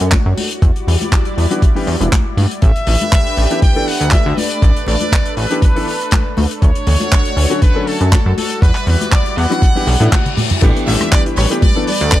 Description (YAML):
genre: nu-disco, nu disco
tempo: 120 BPM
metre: 4/4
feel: swing 54% on 16ths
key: A mixolydian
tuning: A4 = 444 Hz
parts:
  - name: lush unison pad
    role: sustained chords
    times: 0.0-12.2 s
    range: G3 to D5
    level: -24 LUFS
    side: equal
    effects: chorus, phaser, sidechain pumping
  - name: chorused synth bass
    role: bass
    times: 0.0-12.2 s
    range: E1 to A2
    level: -14 LUFS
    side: equal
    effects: none
  - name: damped 70s drum kit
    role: drums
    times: 0.0-12.2 s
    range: crash cymbal, handclaps, hi-hat, rim click, toms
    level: -21 LUFS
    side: equal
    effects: studio reverb
  - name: electronic kick drum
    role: drums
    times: 0.1-12.2 s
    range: none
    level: -12 LUFS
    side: equal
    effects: overdrive, studio reverb
  - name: congas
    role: percussion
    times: 0.1-11.7 s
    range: none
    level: -25 LUFS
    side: left 4 dB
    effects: none
  - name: warm grand piano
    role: accompaniment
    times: 1.5-11.9 s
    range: D3 to A4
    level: -20 LUFS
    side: left 2 dB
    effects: slapback echo
  - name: brilliant trumpet section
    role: melody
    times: 2.6-12.2 s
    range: A4 to G5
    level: -21 LUFS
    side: equal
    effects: tape echo
  - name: reverse cymbal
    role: sound effects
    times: 9.9-10.6 s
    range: none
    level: -24 LUFS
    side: left 5 dB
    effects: none
  - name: soft round pluck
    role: arpeggios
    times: 10.6-12.2 s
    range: G3 to E4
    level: -24 LUFS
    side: left 2 dB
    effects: chorus, sidechain pumping, tape echo
room: small room ambience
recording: none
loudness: -12 LUFS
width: side -14 dB against mid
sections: 0.0-10.6 A section; 10.6-12.2 B section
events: reverse cymbal 9.9-10.6; drum fill 10.1-10.6; drop 10.6-12.2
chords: 0.4 Em9; 2.6 A9sus4; 6.6 Dmaj7; 8.4 Em9; 10.6 A9sus4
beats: 0.12 | 0.62 1.12 1.62 2.12 | 2.62 3.12 3.62 4.12 | 4.62 5.12 5.62 6.12 | 6.62 7.12 7.62 8.12 | 8.62 9.12 9.62 10.12 | 10.62 11.12 11.62 12.12